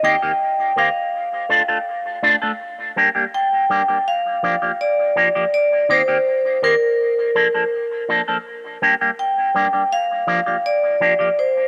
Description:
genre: reggae.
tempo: 82 BPM.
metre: 4/4.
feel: straight.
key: unclear.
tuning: A4 = 440 Hz.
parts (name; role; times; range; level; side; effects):
vibraphone with hard mallets; melody; 0.0-11.7 s; Bb4 to G5; -21 LUFS; equal; dub echo.
electric guitar with an envelope filter; accompaniment; 0.0-11.3 s; Eb3 to A4; -22 LUFS; equal; phaser, dub echo.
room: moderate plate reverb, RT60 3.3 s.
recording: echo-heavy mix.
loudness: -18 LUFS.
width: mono.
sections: 0.0-11.7 A section.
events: none.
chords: 0.0 Cm7; 1.1 Dm/A; 2.6 Gm; 4.1 Gm7; 5.5 Cm7; 7.0 Bbmaj7; 8.5 Gm; 9.9 Gm7.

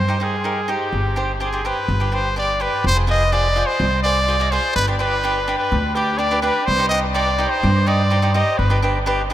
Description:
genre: calypso.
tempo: 125 BPM.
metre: 4/4.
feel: straight.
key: unclear.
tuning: A4 = 440 Hz.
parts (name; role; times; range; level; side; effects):
bright trumpet; melody; 0.0-8.8 s; G4 to Eb5; -20 LUFS; equal; none.
upright bass; bass; 0.0-9.3 s; F1 to G2; -21 LUFS; equal; none.
cavaquinho; accompaniment; 0.1-9.3 s; D4 to Eb5; -23 LUFS; right 1 dB; none.
room: wet huge ambient reverb, RT60 8.2 s.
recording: in a vast, echoing space.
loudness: -16 LUFS.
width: side -12 dB against mid.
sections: 0.0-2.8 A section; 2.8-9.3 B section.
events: none.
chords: 0.0 Cm; 0.9 Gsus4; 1.9 G; 2.8 Fm; 4.8 G; 6.7 Cm; 8.6 G.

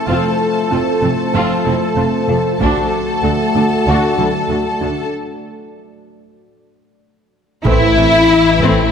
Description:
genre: cinematic, hybrid orchestral and electronic film score.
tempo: 95 BPM.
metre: 4/4.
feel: straight.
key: A minor.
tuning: A4 = 440 Hz.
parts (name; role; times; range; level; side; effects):
warm symphonic violin section; second line; 0.0-8.9 s; E4 to A5; -19 LUFS; left 4 dB; none.
dark French horn section; sustained chords; 0.0-8.9 s; E3 to F#4; -21 LUFS; left 4 dB; none.
deep dark ambient pad; sustained chords; 0.0-8.9 s; F3 to D5; -22 LUFS; right 2 dB; chorus, built-in reverb.
warm studio viola section; accompaniment; 0.1-8.9 s; E3 to F#4; -22 LUFS; equal; none.
thumb-piano-like synth pluck; arpeggios; 0.1-8.8 s; D3 to F4; -24 LUFS; right 3 dB; chorus, digital delay.
warm symphonic cello section; bass; 0.1-8.9 s; D2 to E4; -19 LUFS; right 1 dB; none.
warm symphonic double bass section; bass; 0.1-8.7 s; F1 to D2; -23 LUFS; right 4 dB; none.
taiko ensemble; drums; 2.6-3.8, 7.7-8.9 s; none; -21 LUFS; equal; none.
rich symphonic violin section; melody; 7.7-8.9 s; E4; -21 LUFS; left 4 dB; none.
warm trombone section; sustained chords; 7.7-7.9 s; E3 to C4; -25 LUFS; right 5 dB; none.
dark detuned saw bass; bass; 7.7-8.9 s; A1; -20 LUFS; equal; none.
room: moderate scoring stage reverb, RT60 2.0 s.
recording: none.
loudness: -12 LUFS.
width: side -7 dB against mid.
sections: 0.0-7.7 A section; 7.7-8.9 B section.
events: break 5.1-7.7; drum fill 6.7-7.7.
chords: 0.1 F; 2.6 D; 5.1 N.C.; 7.7 Am.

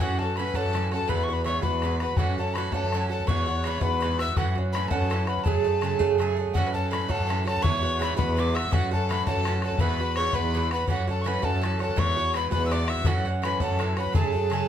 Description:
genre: celtic folk, Celtic jig.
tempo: 110 BPM (dotted quarters).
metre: 6/8.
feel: straight.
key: F# minor.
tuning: A4 = 440 Hz.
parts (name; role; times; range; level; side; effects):
mellow hollow tin whistle; melody; 0.0-14.7 s; F#5 to E6; -30 LUFS; left 4 dB; none.
rich fiddle; second line; 0.0-14.7 s; F#4 to E5; -33 LUFS; left 4 dB; none.
Irish bouzouki; accompaniment; 0.0-14.7 s; G#2 to G#4; -29 LUFS; right 8 dB; none.
muted cello; bass; 0.0-14.6 s; E2 to F#2; -28 LUFS; equal; none.
bodhran; percussion; 0.2-14.6 s; none; -29 LUFS; left 2 dB; none.
room: moderate studio reverb, RT60 0.6 s.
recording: none.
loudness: -23 LUFS.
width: side -9 dB against mid.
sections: 0.0-6.6 A section; 6.6-14.7 A section.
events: none.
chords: 0.0 F#m7; 1.1 Eadd9; 2.2 F#m7; 3.3 Eadd9; 4.4 F#m7; 5.5 F#madd9; 6.6 F#m7; 7.6 Eadd9; 8.7 F#m7; 9.8 Eadd9; 10.9 F#m7; 12.0 Eadd9; 13.1 F#m7; 14.1 F#madd9.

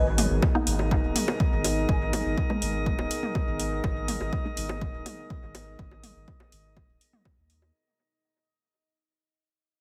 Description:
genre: dub techno.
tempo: 123 BPM.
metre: 4/4.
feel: straight.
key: G# minor.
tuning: A4 = 445 Hz.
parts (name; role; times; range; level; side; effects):
dark analog pad; sustained chords; 0.0-7.7 s; B3 to A#4; -37 LUFS; equal; chorus, sidechain pumping.
filtered dub chord stab; riff; 0.0-4.0 s; A#4 to G#5; -37 LUFS; equal; phaser, ensemble chorus, sidechain pumping, dub echo.
round analog bass; bass; 0.0-7.7 s; D#1 to D#2; -33 LUFS; equal; sidechain pumping.
drifting glass-harmonics texture; texture; 0.0-7.8 s; D#4 to D#5; -38 LUFS; equal; chorus, built-in reverb, sidechain pumping.
electronic hi-hat; drums; 0.2-7.6 s; none; -34 LUFS; equal; studio reverb.
electronic toms and bongos; percussion; 0.2-7.7 s; none; -37 LUFS; equal; overdrive, sidechain pumping on perc, studio reverb, sidechain pumping on toms, dub echo.
electronic kick drum; drums; 0.4-7.4 s; none; -30 LUFS; equal; studio reverb.
filtered dub chord stab; stabs; 0.5-4.7 s; G#3 to D#4; -36 LUFS; equal; phaser, sidechain pumping, dub echo.
room: moderate echo chamber reverb, RT60 2.1 s.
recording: heavily compressed radio sound, multiband compression.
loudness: -27 LUFS.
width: mono.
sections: 0.0-7.7 A section.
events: fade-out 0.0-7.7; filter sweep on analog synth bass 0.0-7.7.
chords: 0.0 G#madd9.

